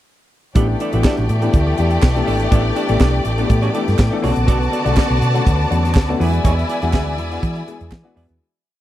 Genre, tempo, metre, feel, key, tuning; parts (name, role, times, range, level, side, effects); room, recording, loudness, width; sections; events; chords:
disco; 122 BPM; 4/4; straight; A4 = 443 Hz
clear concert grand piano; accompaniment; 0.5-8.4 s; C#3 to A4; -23 LUFS; left 5 dB
rich studio violin section; second line; 0.6-8.4 s; A3 to A5; -24 LUFS; left 1 dB
semi-hollow electric guitar; accompaniment; 0.6-8.4 s; B3 to D5; -25 LUFS; right 3 dB
dark symphonic string section; sustained chords; 0.6-8.4 s; A4 to E6; -30 LUFS; left 4 dB
hollow-body short-scale fingered electric bass; bass; 0.6-8.4 s; G#1 to E3; -18 LUFS; right 1 dB
tight funk drum kit; drums; 0.6-8.4 s; hi-hat, kick drum, snare drum; -16 LUFS; equal
group handclap; percussion; 1.0-8.0 s; -31 LUFS; right 14 dB
studio reverb; dry, close 1970s-style studio recording; -14 LUFS; side -13 dB against mid
0.6-8.4 verse
fade-out 6.4-8.4
0.6 A7sus4; 4.2 Bm7; 6.2 E7